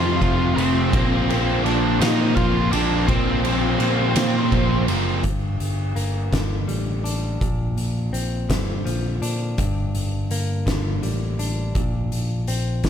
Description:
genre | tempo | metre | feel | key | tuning
quiet-loud alternative rock | 55 BPM (dotted quarters) | 6/8 | straight | G minor | A4 = 440 Hz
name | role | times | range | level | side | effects
octave-fuzz lead guitar | melody | 0.0-4.8 s | C4 to F5 | -25 LUFS | equal | distortion
cranked stack guitar | riff | 0.0-5.2 s | F2 to C4 | -26 LUFS | right 12 dB | overdrive
distorted electric guitar | riff | 0.0-5.2 s | F2 to C4 | -26 LUFS | left 11 dB | distortion
overdriven electric guitar | riff | 0.0-5.2 s | F2 to Bb3 | -27 LUFS | right 1 dB | none
picked electric bass | bass | 0.0-12.9 s | F1 to Bb2 | -24 LUFS | equal | none
oversized low-tuned drum kit | drums | 0.2-12.9 s | hi-hat, kick drum, ride cymbal, snare drum | -25 LUFS | equal | none
direct-recorded clean electric guitar | arpeggios | 5.2-12.9 s | G2 to D4 | -30 LUFS | left 4 dB | tape echo
room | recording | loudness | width
studio reverb | none | -19 LUFS | side -8 dB against mid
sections
0.0-5.2 A section; 5.2-12.9 B section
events
none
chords
0.0 F; 0.9 Bbsus2; 5.2 Gm; 7.4 Bbadd9; 9.6 Gm; 11.8 Bbadd9

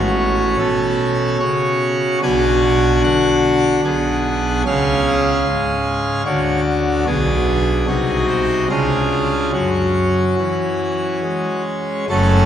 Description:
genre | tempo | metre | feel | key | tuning
classical, chorale-style piece for pipe organ | 74 BPM | 3/4 | rubato | F# minor | A4 = 440 Hz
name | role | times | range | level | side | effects
pipe organ, full organ | solo | 0.0-12.5 s | F#1 to G#5 | -15 LUFS | equal | none
room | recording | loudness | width
wet church reverb, RT60 2.7 s | none | -15 LUFS | side -10 dB against mid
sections
0.0-12.1 A section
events
none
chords
0.0 F#m/A; 2.2 Bm; 4.7 C#; 6.3 Dmaj7; 7.1 G#dim/B; 7.9 G#7/B#; 8.7 C#; 9.5 F#5

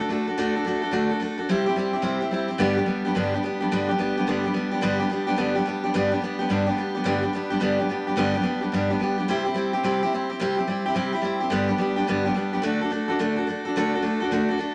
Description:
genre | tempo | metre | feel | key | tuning
rock | 216 BPM | 4/4 | swing 64% on 8ths | G major | A4 = 440 Hz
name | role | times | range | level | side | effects
picked steel-string acoustic guitar | solo | 0.0-14.7 s | G2 to A4 | -24 LUFS | equal | none
room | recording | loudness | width
moderate studio reverb, RT60 0.9 s | none | -24 LUFS | mono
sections
0.0-4.8 A section; 4.8-14.7 A section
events
none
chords
0.0 D; 1.5 C; 2.6 G; 9.3 C; 11.5 G; 12.6 D

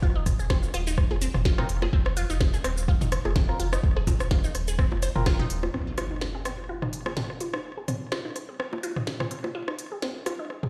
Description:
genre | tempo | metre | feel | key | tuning
minimal techno | 126 BPM | 4/4 | swing 55% on 16ths | F minor | A4 = 441 Hz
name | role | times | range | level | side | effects
resonant blip pluck | riff | 0.0-10.7 s | C4 to C5 | -37 LUFS | equal | phaser, vintage 12-bit sampler grit, sidechain pumping, digital delay
saturated sub bass | bass | 0.0-10.7 s | Eb1 to F1 | -32 LUFS | equal | sidechain pumping, high-pass filter
electronic kick drum | drums | 0.0-5.4 s | none | -26 LUFS | equal | overdrive
minimal click drum kit | drums | 0.3-10.4 s | cabasa, hi-hat, snare drum | -38 LUFS | equal | overdrive
garage drum kit | percussion | 0.3-10.7 s | bongos, rim click, toms | -34 LUFS | equal | overdrive, delay
percussive organ stab | stabs | 1.6-5.3 s | C4 to Bb4 | -38 LUFS | equal | chorus, delay
impact | sound effects | 5.7-7.6 s | none | -38 LUFS | equal | none
room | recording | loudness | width
light reverb | played on a big sound system in a bare room, stone room reverb | -27 LUFS | mono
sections
0.0-5.7 A section; 5.7-10.7 B section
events
drop 0.0-5.7; band accent 5.3; impact 5.7-7.6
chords
0.0 F5

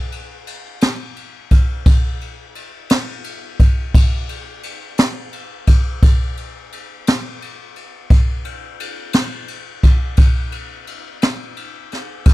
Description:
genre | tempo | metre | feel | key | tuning
blues | 58 BPM (dotted quarters) | 12/8 | straight | none | none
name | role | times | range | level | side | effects
jazz brush drum kit | drums | 0.1-12.3 s | kick drum, ride cymbal, snare drum | -15 LUFS | equal | none
room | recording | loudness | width
little or no reverb | dry, close 1970s-style studio recording | -14 LUFS | side -19 dB against mid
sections
0.0-12.3 A section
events
none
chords
none

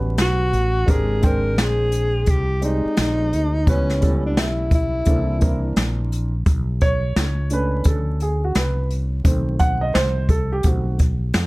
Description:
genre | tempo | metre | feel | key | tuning
hip hop, jazz-hop | 86 BPM | 4/4 | swing 63% on 16ths | unclear | A4 = 441 Hz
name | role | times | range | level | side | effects
dark concert grand piano | accompaniment | 0.0-11.0 s | D#3 to G5 | -26 LUFS | right 2 dB | plate reverb
mellow fretless electric bass | bass | 0.0-11.5 s | G#1 to E#2 | -22 LUFS | equal | none
breathy alto saxophone | melody | 0.2-5.7 s | C#4 to A#4 | -23 LUFS | equal | plate reverb
jazz brush drum kit | drums | 0.2-11.5 s | hi-hat, kick drum, snare drum | -20 LUFS | equal | none
room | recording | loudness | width
light reverb | vinyl crackle | -17 LUFS | side -21 dB against mid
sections
0.0-6.5 A section; 6.5-11.5 B section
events
grand piano solo 6.5-11.5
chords
0.0 A13; 0.9 G#maj9#11; 3.7 C#m7b5; 5.1 C13; 6.5 Bm9; 9.3 B7b9

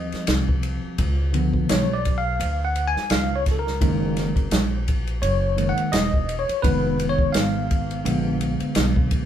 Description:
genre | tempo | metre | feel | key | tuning
hip hop, jazz-hop | 85 BPM | 4/4 | swing 58% on 16ths | unclear | A4 = 439 Hz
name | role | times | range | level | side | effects
bell-like tine electric piano | accompaniment | 0.0-9.3 s | D3 to Ab5 | -24 LUFS | equal | fast stereo tremolo
upright bass | bass | 0.0-9.3 s | Fb1 to Eb2 | -25 LUFS | equal | none
open jazz drum kit | drums | 0.1-9.3 s | hi-hat, kick drum, ride cymbal, snare drum | -24 LUFS | equal | none
room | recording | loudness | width
moderate studio ambience, RT60 0.5 s | band playing live in one room | -20 LUFS | side -10 dB against mid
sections
0.0-9.3 A section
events
tine electric piano solo 0.0-9.3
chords
0.0 Eb69; 1.0 Db7b9; 3.8 Gb6; 6.6 Fm7b5; 8.0 Bb7b9

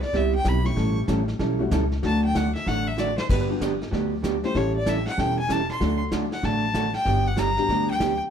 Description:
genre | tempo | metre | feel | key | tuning
country, western swing | 191 BPM | 4/4 | swing 63% on 8ths | G major | A4 = 440 Hz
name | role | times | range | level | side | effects
clear fiddle | melody | 0.0-8.2 s | B4 to C#6 | -27 LUFS | left 2 dB | none
vintage brush drum kit | drums | 0.0-8.3 s | brushed snare drum, crash cymbal, hi-hat, kick drum, snare drum | -31 LUFS | left 1 dB | none
vintage hollow-body jazz guitar | accompaniment | 0.1-8.1 s | C3 to A4 | -27 LUFS | right 4 dB | none
upright bass | bass | 0.1-8.2 s | E1 to D2 | -26 LUFS | left 1 dB | none
tack piano | accompaniment | 0.6-8.0 s | F#3 to A4 | -31 LUFS | left 5 dB | none
room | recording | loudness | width
moderate studio reverb, RT60 0.8 s | none | -21 LUFS | side -8 dB against mid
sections
0.0-8.3 A section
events
fiddle solo 0.0-8.3; drum fill 3.0-3.3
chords
0.0 Cmaj7; 0.8 A7; 2.0 D; 3.3 Gmaj7; 4.6 A7; 5.8 D; 7.1 Gmaj7

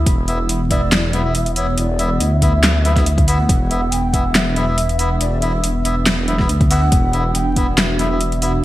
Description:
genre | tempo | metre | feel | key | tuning
deep dubstep | 140 BPM | 4/4 | swing 54% on 16ths, half-time | unclear | A4 = 440 Hz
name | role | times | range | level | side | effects
dark analog pad | sustained chords | 0.0-8.6 s | B3 to F#5 | -24 LUFS | right 1 dB | chorus, phaser
dark detuned saw bass | bass | 0.0-8.6 s | E1 to D2 | -18 LUFS | equal | none
deep house drum kit | drums | 0.1-8.5 s | handclaps, hi-hat, snare drum | -19 LUFS | equal | gated reverb
electronic kick drum | drums | 0.1-7.7 s | none | -17 LUFS | equal | none
melodica | stabs | 0.3-8.5 s | B3 to E5 | -24 LUFS | left 1 dB | vintage 12-bit sampler grit, dub echo
mellow hollow long shakuhachi | melody | 0.7-8.6 s | C#5 to G5 | -25 LUFS | equal | vintage 12-bit sampler grit, dub echo
room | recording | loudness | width
moderate plate reverb, RT60 1.2 s | bright 1980s-style digital production, vinyl crackle | -14 LUFS | side -15 dB against mid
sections
0.0-8.6 A section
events
none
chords
0.0 E5

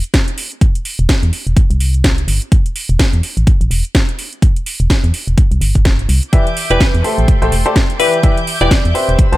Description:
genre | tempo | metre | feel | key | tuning
piano house | 126 BPM | 4/4 | swing 58% on 16ths | E minor | A4 = 440 Hz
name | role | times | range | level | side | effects
house drum kit | drums | 0.0-9.4 s | hi-hat, snare drum | -20 LUFS | right 1 dB | none
electronic kick drum | drums | 0.1-9.3 s | none | -12 LUFS | equal | none
organ-like FM bass | bass | 1.0-9.4 s | E1 to E2 | -14 LUFS | equal | sidechain pumping
warm chamber violin section | sustained chords | 6.3-9.4 s | A4 to G6 | -24 LUFS | equal | sidechain pumping
warm baby grand piano | riff | 6.3-9.4 s | E3 to A5 | -17 LUFS | left 1 dB | sidechain pumping, ping-pong delay
glassy wavetable pluck | melody | 6.7-8.9 s | B4 to D5 | -18 LUFS | left 3 dB | chorus, ping-pong delay
room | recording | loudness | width
little or no reverb | none | -11 LUFS | side -17 dB against mid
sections
0.0-9.4 A section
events
none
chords
0.4 N.C.; 1.6 C5; 2.5 N.C.; 3.2 A5; 4.2 N.C.; 5.4 C5; 6.3 Em7; 7.0 Am7; 8.0 Em7

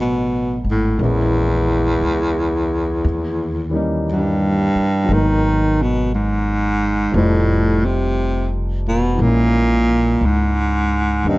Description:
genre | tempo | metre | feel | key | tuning
jazz ballad | 58 BPM | 4/4 | swing 67% on 8ths | unclear | A4 = 438 Hz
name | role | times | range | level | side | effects
warm baritone saxophone | melody | 0.0-11.4 s | E2 to D#3 | -18 LUFS | equal | plate reverb
warm grand piano | accompaniment | 0.0-11.4 s | D#3 to D#5 | -25 LUFS | equal | none
upright bass | bass | 0.0-11.4 s | F1 to D#2 | -20 LUFS | equal | none
room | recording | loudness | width
light reverb | dark, warm production, nothing above 7.7 kHz | -15 LUFS | side -20 dB against mid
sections
0.0-11.4 A section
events
none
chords
0.0 B13; 1.0 A#m7b5; 3.0 D#7b9; 5.1 G#m7; 7.1 F7; 9.2 A#m7b5

